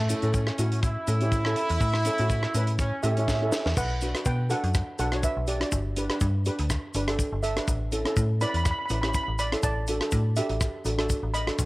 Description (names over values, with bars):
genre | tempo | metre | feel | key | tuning
calypso | 123 BPM | 4/4 | swing 54% on 16ths | D major | A4 = 438 Hz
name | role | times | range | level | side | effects
warm horn section | second line | 0.0-3.7 s | A3 to E4 | -30 LUFS | right 1 dB | cassette tape
metallic FM bass | bass | 0.0-11.7 s | G1 to B2 | -27 LUFS | equal | none
steel pan | accompaniment | 0.1-11.6 s | C#4 to D5 | -32 LUFS | equal | cassette tape
tight funk drum kit | drums | 0.1-11.7 s | crash cymbal, hi-hat, kick drum, rim click, snare drum | -30 LUFS | equal | cassette tape
tube shaker | percussion | 0.1-11.7 s | none | -39 LUFS | left 4 dB | none
steel pan | melody | 3.0-11.7 s | G4 to B5 | -31 LUFS | right 2 dB | cassette tape, tape echo
room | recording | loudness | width
light reverb, small room ambience | home recording on cassette | -24 LUFS | side -20 dB against mid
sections
0.0-3.8 A section; 3.8-11.7 B section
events
drum fill 3.3-3.8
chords
0.0 A; 3.8 Bm; 5.7 G; 7.7 Aadd9; 9.6 Dadd9/A